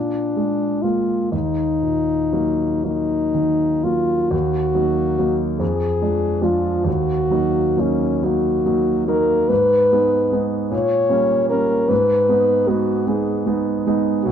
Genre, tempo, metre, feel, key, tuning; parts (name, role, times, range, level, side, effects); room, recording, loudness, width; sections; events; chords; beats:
classical, romantic duo for French horn and grand piano; 39-52 BPM (dotted quarters); 6/8; rubato; Eb minor; A4 = 440 Hz
mellow French horn; melody; 0.0-14.3 s; Db4 to Db5; -19 LUFS; left 2 dB
warm concert grand piano; accompaniment; 0.0-14.3 s; B1 to Eb4; -20 LUFS; right 2 dB
moderate studio reverb, RT60 0.9 s; dark, warm production; -16 LUFS; side -8 dB against mid
0.0-4.3 A section; 4.3-14.3 B section
0.0 Bb7; 1.3 Ebm; 5.6 Ddim/F; 6.9 Ebm; 9.5 Abm; 10.7 Gdim/Bb; 11.9 Abm
| 1.33 2.85 | 4.33 5.61 | 6.87 8.24 | 9.50 10.72 | 11.90 13.08 | 14.27